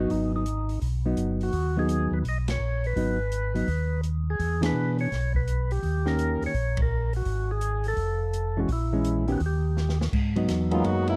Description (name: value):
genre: soul jazz organ trio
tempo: 168 BPM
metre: 4/4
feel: swing 65% on 8ths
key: G# minor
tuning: A4 = 440 Hz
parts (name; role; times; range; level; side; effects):
- percussive tonewheel organ; melody; 0.0-11.2 s; F#3 to D#5; -33 LUFS; equal; slow rotary speaker, slapback echo
- hollow-body jazz guitar; accompaniment; 0.0-10.8 s; D#3 to G#4; -29 LUFS; equal; none
- tonewheel organ; bass; 0.0-11.2 s; F1 to B2; -29 LUFS; equal; slow rotary speaker
- open jazz drum kit; drums; 0.1-11.1 s; crash cymbal, hi-hat, kick drum, ride cymbal, snare drum; -35 LUFS; equal; none
- warm tenor saxophone; melody; 10.7-11.2 s; E4 to F#4; -31 LUFS; equal; none
room: little or no reverb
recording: dry, close 1970s-style studio recording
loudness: -27 LUFS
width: mono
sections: 0.0-10.1 A section; 10.1-11.2 B section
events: band accent 2.4, 4.6, 6.7; drum fill 9.8-10.1; tenor saxophone solo 10.1-11.2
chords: 0.1 G#m7; 4.4 E7; 5.8 D#7; 7.3 F#madd9/G#; 8.0 F; 8.7 A#m7b5; 9.4 D#; 10.1 G#m7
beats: | 0.10 0.46 0.82 1.18 | 1.53 1.89 2.25 2.61 | 2.96 3.32 3.68 4.04 | 4.39 4.75 5.11 5.47 | 5.83 6.18 6.54 6.90 | 7.26 7.62 7.97 8.33 | 8.69 9.05 9.41 9.77 | 10.12 10.48 10.84